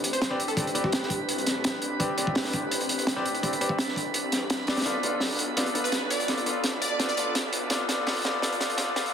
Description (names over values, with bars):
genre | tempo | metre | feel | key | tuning
drum and bass, jungle | 168 BPM | 4/4 | straight | A minor | A4 = 440 Hz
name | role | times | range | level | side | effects
airy breathy pad | sustained chords | 0.0-9.1 s | B3 to B4 | -34 LUFS | equal | chorus
detuned saw bass | bass | 0.0-9.1 s | A1 to D2 | -39 LUFS | equal | none
crunchy breakbeat drum kit | drums | 0.0-9.1 s | hi-hat, kick drum, snare drum | -28 LUFS | equal | high-pass filter on kick, high-pass filter on hats, high-pass filter on snare, high-pass filter on room
drifting glass-harmonics texture | texture | 0.0-9.1 s | B4 to B5 | -38 LUFS | right 2 dB | chorus, built-in reverb
plucky unison lead | melody | 0.1-1.2, 5.8-7.2 s | G4 to D5 | -33 LUFS | right 1 dB | phaser, cassette tape, dub echo
clear concert grand piano | stabs | 0.3-9.1 s | B3 to D5 | -30 LUFS | left 2 dB | dub echo
room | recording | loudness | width
wet echo chamber reverb, RT60 1.7 s, studio reverb | dense, heavily limited modern master, high-pass filter | -24 LUFS | side -8 dB against mid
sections
0.0-9.1 A section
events
build-up 0.0-9.1; drum fill 4.9-9.1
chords
0.0 Am11; 4.9 Bm7b5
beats
0.21 | 0.57 0.93 1.29 1.64 | 2.00 2.36 2.71 3.07 | 3.43 3.79 4.14 4.50 | 4.86 5.21 5.57 5.93 | 6.29 6.64 7.00 7.36 | 7.71 8.07 8.43 8.79